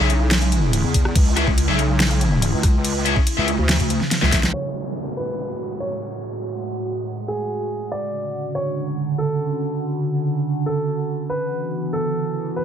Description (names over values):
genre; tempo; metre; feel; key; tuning
heavy wobble dubstep; 142 BPM; 4/4; half-time; F# minor; A4 = 441 Hz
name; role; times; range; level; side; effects
evolving wavetable pad; sustained chords; 0.0-12.6 s; A2 to F#4; -25 LUFS; right 2 dB; chorus, built-in reverb, phaser, sidechain pumping
high-gain distorted guitar; stabs; 0.0-4.3 s; C#4 to E5; -24 LUFS; left 5 dB; distortion, tape echo
wobble bass; bass; 0.0-4.5 s; B1 to E2; -20 LUFS; equal; chorus, overdrive
dubstep drum kit; drums; 0.1-4.5 s; crash cymbal, hi-hat, rim click, snare drum; -23 LUFS; equal; overdrive
electronic kick drum; drums; 0.9-4.4 s; none; -18 LUFS; equal; overdrive
dark baby grand piano; melody; 4.5-12.6 s; G#4 to D5; -27 LUFS; right 1 dB; tape echo
downlifter; sound effects; 4.5-7.9 s; none; -33 LUFS; equal; none
room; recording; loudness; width
light reverb; low-pass filter; -19 LUFS; side -9 dB against mid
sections
0.0-4.5 A section; 4.5-12.6 B section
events
drop 0.0-4.5; drum fill 4.1-4.5; filter sweep 4.5-12.6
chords
0.0 C#m; 4.5 F#madd9; 7.9 Dmaj7; 11.3 Esus2